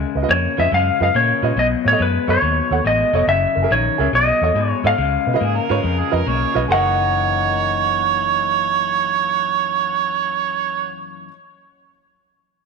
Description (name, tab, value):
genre	blues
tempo	140 BPM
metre	4/4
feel	swing 68% on 8ths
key	F# mixolydian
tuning	A4 = 440 Hz
part	electric guitar through a small old amp	riff	0.0-11.3 s	F#2 to D#4	-25 LUFS	left 14 dB	spring reverb
part	vintage muted fingered electric bass	bass	0.0-11.3 s	E#1 to B2	-22 LUFS	left 1 dB	none
part	clear upright piano	accompaniment	0.2-11.3 s	E#4 to F#5	-24 LUFS	right 10 dB	none
part	clean lap steel guitar	melody	0.3-10.9 s	B4 to F#5	-18 LUFS	left 1 dB	none
part	mellow harmonica	second line	5.4-10.9 s	G#4 to C#5	-19 LUFS	right 12 dB	overdrive
room	moderate echo chamber reverb, RT60 2.5 s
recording	1960s-style stereo with parts hard left and right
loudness	-16 LUFS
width	side -5 dB against mid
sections	0.0-6.7 A section; 6.7-10.1 B section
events	none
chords	0.0 C#7; 1.6 B7; 3.3 F#7; 4.1 B7; 5.0 C#7; 6.7 F#13